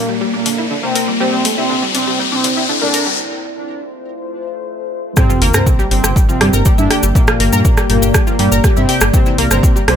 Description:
melodic techno; 121 BPM; 4/4; straight; G dorian; A4 = 435 Hz
analog synth brass; melody; 0.0-10.0 s; Bb2 to D4; -19 LUFS; right 1 dB; chorus, cassette tape, sidechain pumping, digital delay
deep dark ambient pad; sustained chords; 0.0-10.0 s; A3 to D5; -22 LUFS; left 2 dB; chorus, built-in reverb, sidechain pumping
analog pluck; arpeggios; 0.0-10.0 s; D3 to Bb5; -20 LUFS; left 1 dB; analog chorus, sidechain pumping, digital delay
riser and sub drop; sound effects; 0.0-7.2 s; -20 LUFS; left 2 dB
punchy analog drum machine; drums; 0.5-10.0 s; hi-hat, rim click; -18 LUFS; right 1 dB; sidechain pumping on hats
electronic kick drum; drums; 5.2-9.7 s; -13 LUFS; equal
cabasa; percussion; 5.2-9.9 s; -22 LUFS; left 4 dB
dark detuned saw bass; bass; 5.4-10.0 s; G1 to G2; -15 LUFS; equal; sidechain pumping
light reverb, digital ambience; high-pass filter; -11 LUFS; side -8 dB against mid
0.0-5.2 A section; 5.2-10.0 B section
build-up 0.0-5.2; riser 0.0-3.2; filter sweep on synth pluck 0.0-5.2; filter sweep on analog polysynth 0.0-5.2; filter sweep on ambient pad 0.0-5.2; filter sweep 0.0-5.2; break 3.2-5.2; drop 5.2-10.0; impact 5.2-7.2
0.0 Gm; 1.2 Cadd9; 3.2 F; 5.2 Gm; 9.1 Cadd9

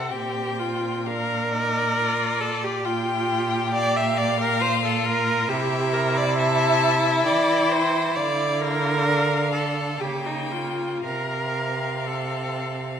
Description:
classical, slow romantic movement for string quartet; 56-69 BPM; 3/4; rubato; F major; A4 = 440 Hz
rich violin; melody; 0.0-13.0 s; D5 to A5; -29 LUFS; left 10 dB
rich violin; second line; 0.0-13.0 s; Bb3 to G4; -28 LUFS; left 4 dB
clear viola; accompaniment; 0.0-13.0 s; Eb4 to E5; -24 LUFS; right 2 dB
rich cello; bass; 0.0-13.0 s; Bb2 to E3; -27 LUFS; right 4 dB
wet recital hall reverb, RT60 1.5 s; minimal, uncompressed stereo recording; -21 LUFS; side -8 dB against mid
0.0-13.0 A section
0.1 Bb; 2.8 Gm7/Bb; 5.5 C; 8.2 Bb/D; 10.0 Db; 11.0 F/C

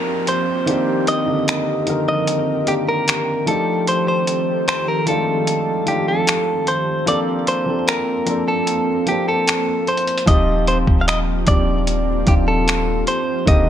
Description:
contemporary R&B; 75 BPM; 4/4; straight; A4 = 440 Hz
direct-recorded clean electric guitar; melody; 0.0-13.7 s; G4 to F5; -20 LUFS; equal; spring reverb
dark baby grand piano; accompaniment; 0.0-13.7 s; D3 to C5; -22 LUFS; equal
ethereal airy pad; sustained chords; 0.0-13.7 s; Eb3 to Bb4; -24 LUFS; equal; ensemble chorus, built-in reverb, sidechain pumping
downlifter; sound effects; 0.0-3.9 s; -36 LUFS; equal
dusty soul sampler-style drum kit; drums; 0.3-13.7 s; finger snaps, hi-hat, kick drum; -19 LUFS; equal
soft 808-style bass; bass; 10.3-13.7 s; Eb1; -21 LUFS; equal
light reverb, digital ambience; -16 LUFS; side -10 dB against mid
0.0-13.7 A section
break 0.0-10.3
0.0 Ebmaj13; 0.7 Cm9; 3.5 F13; 7.1 Bbmaj9; 10.3 Ebmaj13

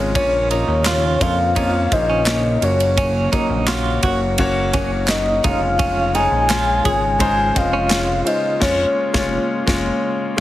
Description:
piano-driven pop; 85 BPM; 4/4; straight; A4 = 440 Hz
warm grand piano; accompaniment; 0.0-10.4 s; Bb2 to Eb5; -22 LUFS; left 3 dB
airy breathy pad; sustained chords; 0.0-10.4 s; Db3 to F4; -28 LUFS; equal; chorus
chorused synth bass; bass; 0.0-10.4 s; F1 to F2; -22 LUFS; equal
soft octave-layered synth lead; melody; 0.2-9.3 s; Db5 to Ab5; -19 LUFS; left 1 dB; chorus, tremolo
direct-recorded clean electric guitar; riff; 0.2-8.1 s; Db4 to Ab4; -24 LUFS; right 6 dB; tremolo
modern studio drum kit; drums; 0.2-9.9 s; crash cymbal, handclaps, kick drum, ride cymbal, snare drum; -23 LUFS; equal
group handclap; percussion; 0.9-8.1 s; -31 LUFS; equal
light reverb, studio ambience; heavily compressed radio sound; -15 LUFS; side -14 dB against mid
0.0-10.4 A section
band accent 8.6-10.4
0.2 Bbm; 2.6 Gb; 5.4 Db/F

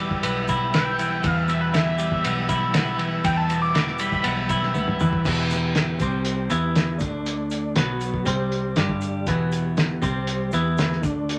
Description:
psychedelic rock; 120 BPM; 4/4; straight; E minor; A4 = 440 Hz
mellow tonewheel organ; sustained chords; 0.0-11.4 s; F#3 to E6; -35 LUFS; equal; chorus vibrato
twelve-string electric guitar; riff; 0.0-11.4 s; E2 to E4; -27 LUFS; equal
vintage muted picked electric bass; bass; 0.0-11.4 s; E1 to E2; -31 LUFS; equal
cloth-damped thuddy drum kit; drums; 0.1-11.4 s; crash cymbal, hi-hat, kick drum, ride cymbal, snare drum, toms; -28 LUFS; equal
tube shaker; percussion; 0.2-11.4 s; -50 LUFS; equal
overdriven synth lead; melody; 0.7-4.2 s; B4 to D6; -28 LUFS; equal; phaser
moderate studio reverb, RT60 0.6 s; -23 LUFS; mono
0.0-5.3 A section; 5.3-11.4 B section
analog synth lead solo 0.0-5.3; drum fill 4.8-5.3
0.0 Em; 6.0 C5; 6.5 Em; 7.0 D5; 7.8 B5; 8.3 C5; 8.8 G5; 9.3 Em; 10.0 C5; 10.5 Em

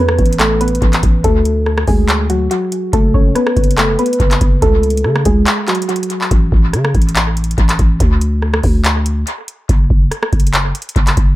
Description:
hip hop, trap; 142 BPM; 4/4; half-time; A4 = 440 Hz
soft round pluck; melody; 0.0-6.3 s; F#3 to C#5; -16 LUFS; equal; chorus, tape echo
growling 808-style bass; bass; 0.0-11.4 s; F#1 to C#3; -15 LUFS; equal
booming analog drum machine; drums; 0.1-11.4 s; handclaps, hi-hat, kick drum, rim click; -14 LUFS; equal; tape echo
digital ambience; echo-heavy mix; -11 LUFS; side -16 dB against mid
0.0-11.4 A section
break 5.5-6.3
0.0 A5; 1.2 D; 2.9 F#m; 4.6 C#5; 6.3 N.C.

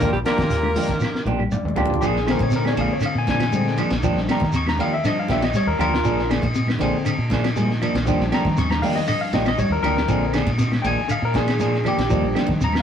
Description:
afrobeat; 119 BPM; 4/4; straight; Bb mixolydian; A4 = 440 Hz
edgy alto saxophone; melody; 0.0-1.2 s; G4 to Bb4; -24 LUFS; left 1 dB
breathy trumpet; second line; 0.0-1.2 s; G3 to Bb3; -30 LUFS; left 1 dB
raspy baritone saxophone; second line; 0.0-1.2 s; G2 to Bb2; -33 LUFS; left 1 dB
clean electric guitar; arpeggios; 0.0-12.7 s; C3 to Ab3; -30 LUFS; left 3 dB; spring reverb
clean electric guitar; stabs; 0.0-12.5 s; F3 to Ab4; -26 LUFS; right 2 dB
fingered electric bass; bass; 0.0-12.8 s; Bb1 to Eb3; -25 LUFS; equal
cloth-damped thuddy drum kit; drums; 0.0-12.8 s; hi-hat, kick drum, ride cymbal, snare drum, toms; -25 LUFS; left 1 dB
congas; percussion; 0.0-12.8 s; -31 LUFS; equal
shekere; percussion; 0.0-12.7 s; -29 LUFS; right 2 dB
barky tine electric piano; accompaniment; 0.2-12.8 s; D3 to Db6; -24 LUFS; left 2 dB; overdrive
claves; percussion; 0.3-12.8 s; -34 LUFS; right 8 dB
wet small room reverb, RT60 0.5 s; rough rehearsal-room recording, tube saturation; -18 LUFS; side -8 dB against mid
0.0-2.0 A section; 2.0-12.8 B section
drum fill 1.0-2.0; tine electric piano fill 1.3-2.0; tine electric piano solo 2.0-12.8
0.0 Ebmaj9; 2.0 Bb7; 4.0 Ebmaj9; 6.0 Bb7; 8.1 Ebmaj9; 10.1 Bb7; 12.1 Ebmaj9

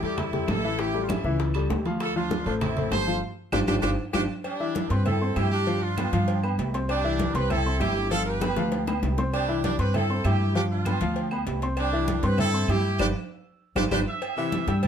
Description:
latin, salsa; 196 BPM; 4/4; straight; C major; A4 = 440 Hz
clear horn section; melody; 0.0-14.0 s; G3 to C5; -29 LUFS; right 1 dB
warm baby grand piano; accompaniment; 0.0-14.9 s; E3 to E6; -29 LUFS; left 3 dB
upright bass; bass; 0.0-14.9 s; G1 to G2; -27 LUFS; equal
timbales and agogo bells; percussion; 0.0-14.9 s; -34 LUFS; right 7 dB
bongos and cowbell; percussion; 0.2-14.9 s; -36 LUFS; left 4 dB
claves; percussion; 0.2-14.9 s; -42 LUFS; right 3 dB
congas; percussion; 0.2-14.9 s; -33 LUFS; right 2 dB
bright trumpet section; melody; 13.9-14.9 s; G4 to E6; -33 LUFS; right 4 dB
edgy saxophone section; second line; 14.4-14.7 s; C3; -34 LUFS; right 2 dB
light reverb; -23 LUFS; side -8 dB against mid
0.0-4.4 A section; 4.4-14.2 B section
band accent 3.2-4.4, 13.0-14.2; drum fill 3.7-4.4, 8.4-9.3, 13.0-14.2
0.0 Am7; 0.8 A7; 2.0 Dm9; 3.2 G5; 4.4 Cadd9; 5.7 G7; 6.9 Cadd9; 8.1 G7; 9.3 Cadd9; 10.6 G7; 11.8 Cadd9; 13.0 G; 14.2 C

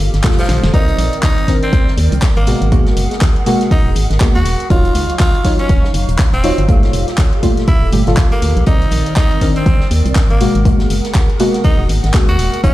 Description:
deep house; 121 BPM; 4/4; swing 59% on 16ths; A4 = 442 Hz
hollow soft pad; sustained chords; 0.0-12.7 s; Eb3 to Db6; -25 LUFS; equal; ensemble chorus, sidechain pumping
deep mellow chord stab; stabs; 0.0-12.7 s; Bb2 to D5; -19 LUFS; equal; chorus, sidechain pumping, dub echo
organ-like FM bass; bass; 0.0-12.7 s; D1 to Eb2; -15 LUFS; equal; sidechain pumping
warm soul drum kit; drums; 0.0-12.7 s; hi-hat, snare drum; -32 LUFS; left 1 dB; sidechain pumping on hats, high-pass filter on hats, high-pass filter on snare, high-pass filter on room
deep house drum kit; drums; 0.1-12.7 s; handclaps, hi-hat, snare drum; -24 LUFS; equal
electronic kick drum; drums; 0.2-12.7 s; -13 LUFS; equal
raspy tenor saxophone; melody; 0.4-12.7 s; F3 to Gb4; -22 LUFS; equal; dub echo
studio ambience; played on a big sound system in a bare room, stone room reverb; -11 LUFS; side -16 dB against mid
0.0-12.7 A section
drum fill 0.5
0.0 Gm9; 0.7 Cm9; 2.5 Abm9; 4.7 Ebm9; 6.7 Gm9; 8.7 Cm9; 10.4 Abm9

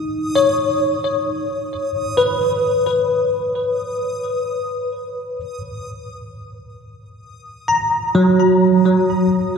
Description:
ambient; free time; A4 = 440 Hz
bell-like tine electric piano; arpeggios; 0.0-9.6 s; F#3 to A#5; -16 LUFS; equal; ensemble chorus, ping-pong delay
backwards swelling texture; texture; 0.0-9.1 s; D#6; -34 LUFS; equal; built-in reverb
wet plate reverb, RT60 3.4 s; dreamy mix soaked in reverb; -16 LUFS; side -6 dB against mid
0.0-9.1 A section
fade-out on synth texture 0.0-9.1
0.0 D#7(no3); 1.7 C#sus2; 5.4 F#

